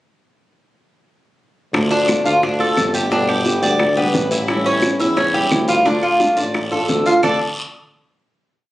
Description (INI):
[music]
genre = latin, Cuban son and guajira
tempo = 175 BPM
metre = 4/4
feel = straight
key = D dorian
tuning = A4 = 440 Hz
[part]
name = flamenco guitar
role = accompaniment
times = 1.7-7.4 s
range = B2 to G4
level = -21 LUFS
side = left 1 dB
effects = none
[part]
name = warm tuba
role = bass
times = 1.7-7.4 s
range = G1 to E2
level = -22 LUFS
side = equal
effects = none
[part]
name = bongos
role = percussion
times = 1.7-7.3 s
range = none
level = -23 LUFS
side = left 2 dB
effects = none
[part]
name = claves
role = percussion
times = 1.7-7.3 s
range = none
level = -28 LUFS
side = right 1 dB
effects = none
[part]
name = guiro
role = percussion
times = 1.7-7.3 s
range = none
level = -27 LUFS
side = left 1 dB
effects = none
[part]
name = Cuban tres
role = arpeggios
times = 1.9-7.4 s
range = C#4 to D5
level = -17 LUFS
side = right 1 dB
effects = none
[sound]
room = moderate studio reverb, RT60 0.8 s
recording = recorded on a phone in the room, club reverb, compression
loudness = -14 LUFS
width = side -16 dB against mid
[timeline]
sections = 1.7-7.2 A section; 7.2-8.6 final chord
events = none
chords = 1.7 Dm; 3.1 G; 4.5 A7; 5.9 Dm; 7.2 D5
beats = | 1.74 2.08 2.43 2.77 | 3.11 3.45 3.80 4.14 | 4.48 4.83 5.17 5.51 | 5.85 6.20 6.54 6.88 | 7.23